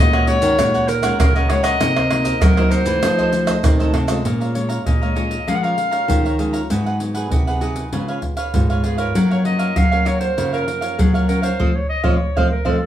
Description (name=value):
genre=samba and choro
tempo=98 BPM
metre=4/4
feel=straight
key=Bb minor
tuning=A4 = 442 Hz
part: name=warm clarinet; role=melody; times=0.0-12.9 s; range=Ab4 to Gb5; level=-21 LUFS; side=equal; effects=plate reverb
part: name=cavaquinho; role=accompaniment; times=0.0-12.8 s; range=Eb4 to Bb5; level=-26 LUFS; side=right 4 dB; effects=none
part: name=nylon-string guitar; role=accompaniment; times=0.0-12.8 s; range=Gb2 to Gb4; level=-26 LUFS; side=left 4 dB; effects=none
part: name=nylon-string guitar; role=bass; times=0.0-12.8 s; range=Ab2 to Gb3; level=-21 LUFS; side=equal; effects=none
part: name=maracas, pandeiro, tamborim and surdo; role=percussion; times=0.1-12.8 s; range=none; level=-19 LUFS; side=right 1 dB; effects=none
room=moderate small room ambience, RT60 0.5 s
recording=small room ambience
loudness=-15 LUFS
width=side -11 dB against mid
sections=0.0-4.3 A section; 4.3-12.9 B section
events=band accent 11.6-12.9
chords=0.0 Ebm7; 1.8 Cm7b5; 3.0 F7b9; 4.3 Bbm7; 6.7 Abm7; 7.9 Db7; 9.1 Gbmaj7; 11.6 F7